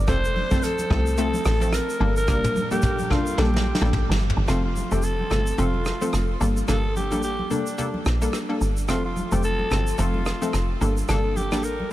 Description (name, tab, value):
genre	afrobeats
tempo	109 BPM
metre	4/4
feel	swing 58% on 16ths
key	unclear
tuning	A4 = 440 Hz
part	woody log drum bass	bass	0.0-11.8 s	F1 to C2	-24 LUFS	equal	none
part	growling alto saxophone	melody	0.1-11.9 s	D4 to C5	-28 LUFS	equal	analog delay
part	analog pluck	accompaniment	0.1-11.9 s	F3 to Bb4	-27 LUFS	left 2 dB	chorus
part	vintage brush drum kit	drums	0.1-11.8 s	hi-hat, kick drum, rim click, shaker, snare drum, toms	-28 LUFS	equal	none
part	congas	percussion	0.1-11.9 s	none	-34 LUFS	right 1 dB	none
room	light reverb, small room ambience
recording	none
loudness	-20 LUFS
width	side -15 dB against mid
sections	0.0-4.5 A section; 4.5-11.9 B section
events	drum fill 3.4-4.5; break 4.5-11.9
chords	0.1 F; 2.0 Gmadd9; 4.5 F; 6.4 Gmadd9; 8.9 F; 10.8 Gmadd9